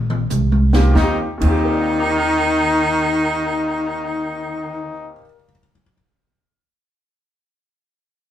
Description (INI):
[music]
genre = jazz, small-group swing and bop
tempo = 88 BPM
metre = 4/4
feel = swing 67% on 8ths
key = Eb major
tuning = A4 = 443 Hz
[part]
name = upright bass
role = bass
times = 0.0-5.1 s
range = Bb1 to Eb2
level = -20 LUFS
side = right 1 dB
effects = none
[part]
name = open jazz drum kit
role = drums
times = 0.1-1.5 s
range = crash cymbal, hi-hat, kick drum, snare drum, toms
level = -22 LUFS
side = right 1 dB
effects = none
[part]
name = clear baby grand piano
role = accompaniment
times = 0.7-5.9 s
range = Eb2 to Bb6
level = -25 LUFS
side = left 1 dB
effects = none
[part]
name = bright trumpet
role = melody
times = 1.0-5.1 s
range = Eb4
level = -23 LUFS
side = left 4 dB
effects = none
[part]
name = bright baritone saxophone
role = second line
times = 1.0-5.1 s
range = Eb3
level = -20 LUFS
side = equal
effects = none
[sound]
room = moderate studio reverb, RT60 0.7 s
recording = band playing live in one room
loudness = -16 LUFS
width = side -11 dB against mid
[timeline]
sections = 1.0-6.4 A section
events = drum fill 0.0-1.0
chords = 0.0 Bbsus2; 1.0 Eb6